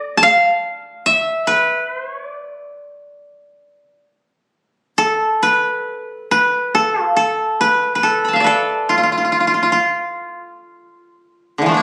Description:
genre	japanese traditional, Japanese chamber music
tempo	65-73 BPM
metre	4/4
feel	rubato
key	D kumoi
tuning	A4 = 438 Hz
part	koto	solo	0.0-11.8 s	D3 to B5	-17 LUFS	equal	none
room	moderate spring reverb, RT60 1.7 s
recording	recorded on a phone in the room, studio reverb, compression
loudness	-17 LUFS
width	mono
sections	0.0-5.0 A section; 5.0-11.8 B section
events	none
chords	none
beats	0.64 | 1.47 2.30 3.15 4.04 | 4.96 5.84 6.72 7.59 | 8.45 9.31 10.16 11.01

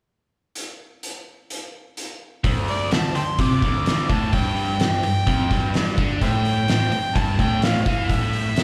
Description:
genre	blues rock power trio and southern rock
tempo	127 BPM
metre	4/4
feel	straight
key	unclear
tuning	A4 = 439 Hz
part	oversized low-tuned drum kit	drums	0.6-8.6 s	hi-hat, kick drum, snare drum	-25 LUFS	equal	none
part	biting overdriven guitar	riff	2.4-8.6 s	D2 to E3	-25 LUFS	equal	slapback echo
part	overdriven harmonica	melody	2.7-8.6 s	C5 to D6	-28 LUFS	equal	none
room	light reverb, small room ambience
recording	live gig heard through the venue's PA, club reverb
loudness	-21 LUFS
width	mono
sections	0.6-2.4 A section; 2.4-8.6 B section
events	none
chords	0.6 N.C.; 2.4 D5; 4.3 G5; 6.2 A5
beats	| 0.55 1.03 1.50 1.97 | 2.44 2.92 3.39 3.86 | 4.33 4.80 5.27 5.75 | 6.21 6.69 7.16 7.62 | 8.09 8.56

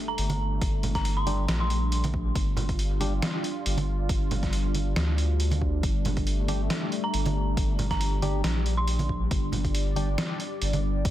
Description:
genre	deep dubstep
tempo	138 BPM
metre	4/4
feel	swing 54% on 16ths, half-time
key	G minor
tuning	A4 = 439 Hz
part	dark analog pad	sustained chords	0.0-11.1 s	G3 to D5	-33 LUFS	left 1 dB	chorus
part	impact	sound effects	0.0-0.6 s	none	-53 LUFS	equal	none
part	dark detuned synth bell	melody	0.1-2.0, 7.0-9.2 s	Bb5 to C6	-34 LUFS	right 1 dB	chorus, dub echo
part	saturated sub bass	bass	0.2-11.1 s	G1 to D2	-27 LUFS	equal	none
part	trip hop sampler-style drum kit	drums	0.2-11.1 s	hi-hat, snare drum	-33 LUFS	equal	none
part	congas	percussion	0.3-10.8 s	none	-34 LUFS	right 4 dB	dub echo
part	electronic kick drum	drums	0.6-11.1 s	none	-29 LUFS	equal	overdrive
part	percussive organ stab	stabs	1.3-3.1, 6.5-10.1 s	G3 to G4	-38 LUFS	left 2 dB	chorus, dub echo
room	light reverb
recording	dense, heavily limited modern master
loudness	-24 LUFS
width	side -13 dB against mid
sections	0.0-11.1 A section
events	impact 0.0-0.6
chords	0.0 G5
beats	0.18 | 0.61 1.05 1.49 1.92 | 2.35 2.79 3.22 3.66 | 4.09 4.53 4.96 5.40 | 5.83 6.27 6.70 7.14 | 7.57 8.01 8.44 8.88 | 9.31 9.74 10.18 10.62 | 11.05

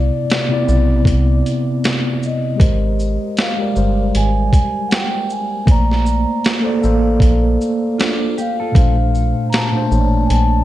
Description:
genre	lo-fi hip hop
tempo	78 BPM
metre	4/4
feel	swing 59% on 16ths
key	Bb major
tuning	A4 = 440 Hz
part	vibraphone with soft mallets	melody	0.0-10.6 s	D5 to Bb5	-24 LUFS	left 2 dB	low-pass filter, diffuse ambient delay
part	mellow tine electric piano	accompaniment	0.0-10.6 s	Bb2 to F5	-18 LUFS	equal	medium stereo tremolo, cassette tape, low-pass filter
part	metallic FM bass	bass	0.0-10.6 s	G1 to C2	-16 LUFS	equal	none
part	boom bap sampler-style drum kit	drums	0.3-10.5 s	hi-hat, kick drum, shaker, snare drum	-17 LUFS	equal	vintage 12-bit sampler grit
part	mellow electric guitar	second line	8.0-9.0 s	D4 to A4	-28 LUFS	right 3 dB	wide subtle chorus, low-pass filter, diffuse ambient delay
room	moderate plate reverb, RT60 3.0 s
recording	dreamy mix soaked in reverb, cassette tape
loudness	-14 LUFS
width	side -14 dB against mid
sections	0.0-8.8 A section; 8.8-10.6 A section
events	none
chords	0.0 Cmaj9; 2.6 Abmaj9; 5.7 Bbmaj9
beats	0.29 1.06 1.83 | 2.60 3.37 4.14 4.91 | 5.67 6.44 7.21 7.98 | 8.75 9.52 10.29

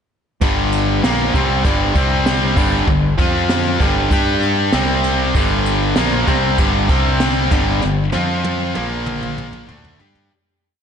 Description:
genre	hard rock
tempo	97 BPM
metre	4/4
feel	straight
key	unclear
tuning	A4 = 444 Hz
part	distorted electric guitar	riff	0.4-10.3 s	G2 to G4	-21 LUFS	right 9 dB	overdrive, slapback echo
part	high-gain distorted guitar	riff	0.4-10.3 s	G2 to G4	-19 LUFS	left 8 dB	distortion, slapback echo
part	growling fingered electric bass	bass	0.4-10.3 s	G1 to G2	-21 LUFS	equal	overdrive
part	jazz brush drum kit	drums	0.4-10.3 s	crash cymbal, kick drum, ride cymbal, snare drum, toms	-20 LUFS	equal	none
room	moderate lush hall reverb, RT60 2.4 s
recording	big arena sound, nothing above 10.7 kHz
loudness	-14 LUFS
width	side -7 dB against mid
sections	0.4-10.3 riff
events	fade-out 7.8-10.3; drum fill 7.8-10.3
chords	0.4 G5; 2.0 C5; 2.6 G5; 3.2 F5; 3.8 G5; 4.7 C5; 5.3 G5; 6.9 C5; 7.5 G5; 8.1 F5; 8.8 Bb5; 9.7 G5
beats	| 0.42 1.03 1.65 2.27 | 2.88 3.50 4.12 4.73 | 5.35 5.97 6.59 7.21 | 7.83 8.45 9.07 9.69

